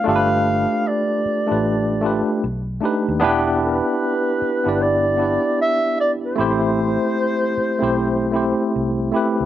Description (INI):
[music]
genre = R&B, neo-soul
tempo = 76 BPM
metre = 4/4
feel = swing 64% on 16ths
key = unclear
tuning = A4 = 440 Hz
[part]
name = breathy clarinet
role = melody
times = 0.0-8.7 s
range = B4 to F5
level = -21 LUFS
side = right 1 dB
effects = none
[part]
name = tine electric piano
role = accompaniment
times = 0.0-9.5 s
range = A3 to D5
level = -19 LUFS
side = equal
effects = overdrive, fast stereo tremolo, slapback echo
[part]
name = vintage muted fingered electric bass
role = bass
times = 0.1-9.5 s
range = E1 to D#2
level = -26 LUFS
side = equal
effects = none
[sound]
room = little or no reverb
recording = recorded outdoors, with no room sound, nothing above 10.9 kHz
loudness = -17 LUFS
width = side -12 dB against mid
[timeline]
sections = 0.0-9.5 A section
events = none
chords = 0.1 G9; 2.4 B7alt; 3.2 Em7; 6.4 Am7